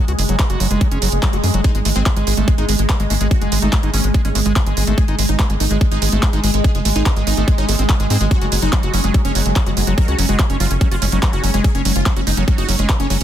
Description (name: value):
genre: psychedelic trance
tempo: 144 BPM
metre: 4/4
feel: straight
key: unclear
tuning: A4 = 440 Hz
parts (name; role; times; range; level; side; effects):
- evolving wavetable pad; sustained chords; 0.0-13.2 s; G#3; -24 LUFS; right 1 dB; ensemble chorus, built-in reverb, sidechain pumping
- overdriven acid bass; riff; 0.0-13.2 s; F#3 to F#4; -24 LUFS; moving between left 6 dB and right 5 dB; auto-pan, sidechain pumping, ping-pong delay
- tight sequencer bass; bass; 0.1-13.2 s; F#1 to G#2; -18 LUFS; equal; tube saturation
- drum and bass drum kit; drums; 0.1-13.2 s; handclaps, hi-hat; -23 LUFS; right 2 dB; overdrive, small room ambience
- electronic kick drum; drums; 0.4-13.0 s; none; -15 LUFS; equal; small room ambience
- swell; sound effects; 1.0-1.6 s; none; -28 LUFS; left 3 dB; none
- supersaw stab; melody; 1.6-13.2 s; F#3 to A#4; -24 LUFS; right 1 dB; phaser, sidechain pumping, tape echo
room: little or no reverb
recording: dense, heavily limited modern master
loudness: -14 LUFS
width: side -11 dB against mid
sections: 0.0-13.2 A section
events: swell 1.0-1.6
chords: 0.0 F#5; 1.6 G#5; 8.3 F#5